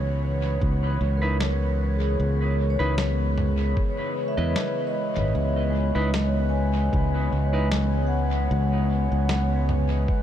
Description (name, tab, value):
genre	ambient dub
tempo	76 BPM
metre	4/4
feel	swing 53% on 16ths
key	C# minor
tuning	A4 = 440 Hz
part	airy breathy pad	sustained chords	0.0-10.2 s	C#3 to C#5	-29 LUFS	right 2 dB	chorus
part	fingered electric bass	bass	0.0-10.1 s	G#1 to E2	-23 LUFS	equal	tube saturation
part	drifting glass-harmonics texture	texture	0.0-10.2 s	B3 to B4	-35 LUFS	left 2 dB	chorus, built-in reverb
part	electronic kick drum	drums	0.6-10.2 s	none	-25 LUFS	equal	none
part	vibraphone with medium mallets	arpeggios	1.2-10.2 s	G#3 to G#5	-31 LUFS	left 4 dB	dub echo
part	clean electric guitar	stabs	1.2-7.7 s	D#4 to D#5	-34 LUFS	right 1 dB	dub echo
part	lo-fi sampler-style drum kit	drums	1.4-9.9 s	snare drum, toms	-32 LUFS	left 1 dB	dub echo
room	light reverb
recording	none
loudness	-21 LUFS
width	side -10 dB against mid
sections	0.0-10.2 A section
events	none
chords	0.0 C#m7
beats	0.61 1.40 | 2.19 2.98 3.77 4.56 | 5.35 6.14 6.93 7.72 | 8.51 9.30 10.09